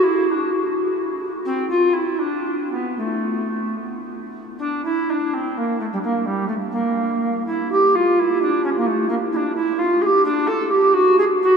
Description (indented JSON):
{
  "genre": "classical, baroque-style fantasia for unaccompanied recorder",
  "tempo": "68-90 BPM (dotted quarters)",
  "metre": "6/8",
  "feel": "rubato",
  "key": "A minor",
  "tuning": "A4 = 440 Hz",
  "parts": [
    { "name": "bass recorder", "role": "solo", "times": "0.0-11.6 s", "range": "G3 to A4", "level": "-18 LUFS", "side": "right 1 dB", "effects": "none" }
  ],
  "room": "wet huge ambient reverb, RT60 8.1 s",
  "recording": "in a vast, echoing space",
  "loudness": "-18 LUFS",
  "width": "side -6 dB against mid",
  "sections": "0.0-4.6 A section; 4.6-11.6 A section",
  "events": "none",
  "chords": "none"
}